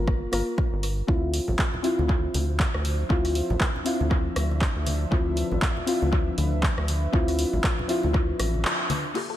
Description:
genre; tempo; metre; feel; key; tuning
deep house; 119 BPM; 4/4; swing 58% on 16ths; unclear; A4 = 444 Hz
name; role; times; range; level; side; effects
deep mellow chord stab; stabs; 0.0-9.4 s; Bb3 to Bb4; -29 LUFS; left 2 dB; chorus, sidechain pumping, tape echo
rubbery square bass; bass; 0.0-8.6 s; G1 to D2; -26 LUFS; equal; sidechain pumping
electronic kick drum; drums; 0.1-8.3 s; none; -24 LUFS; equal; overdrive
punchy analog drum machine; drums; 0.1-9.3 s; crash cymbal, handclaps, hi-hat, rim click; -30 LUFS; equal; analog delay
warm analog pad; sustained chords; 1.1-9.4 s; F3 to A5; -35 LUFS; equal; chorus, sidechain pumping
congas; percussion; 1.5-9.0 s; none; -35 LUFS; left 2 dB; analog delay
analog pluck; arpeggios; 9.2-9.4 s; F4 to A4; -34 LUFS; left 2 dB; chorus, phaser, sidechain pumping
room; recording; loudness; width
light reverb, digital ambience; echo-heavy mix; -22 LUFS; side -12 dB against mid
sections
0.0-9.2 A section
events
band accent 8.6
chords
0.0 Gm7; 1.1 Dm9

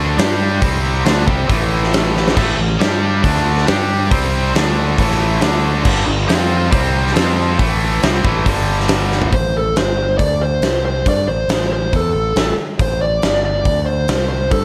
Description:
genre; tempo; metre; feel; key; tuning
hard rock; 138 BPM; 4/4; straight; A minor; A4 = 440 Hz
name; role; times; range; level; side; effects
tight distorted guitar; riff; 0.0-9.3 s; G2 to G4; -20 LUFS; equal; distortion
growling fingered electric bass; bass; 0.0-14.6 s; G1 to G2; -21 LUFS; equal; overdrive
big rock drum kit; drums; 0.2-14.6 s; crash cymbal, hi-hat, kick drum, snare drum, toms; -20 LUFS; equal; none
dark smooth lead guitar; melody; 9.3-14.6 s; A4 to D5; -21 LUFS; equal; overdrive, slapback echo
room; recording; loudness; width
moderate large studio reverb, RT60 1.4 s, studio ambience; none; -16 LUFS; mono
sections
0.0-9.3 A section; 9.3-14.6 B section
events
drum fill 2.1, 9.1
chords
0.2 G5; 0.6 C5; 1.1 Am; 2.8 G5; 3.2 D5; 3.7 G5; 4.1 C5; 4.5 D5; 5.0 A5; 5.4 D5; 5.9 G5; 6.3 F5; 6.7 C5; 7.2 F5; 7.6 A5; 8.0 G5; 9.3 Am; 9.8 Gsus4; 10.2 Csus2/D; 10.6 N.C.; 11.1 Am; 13.2 G5; 13.7 Csus2/D; 14.1 N.C.

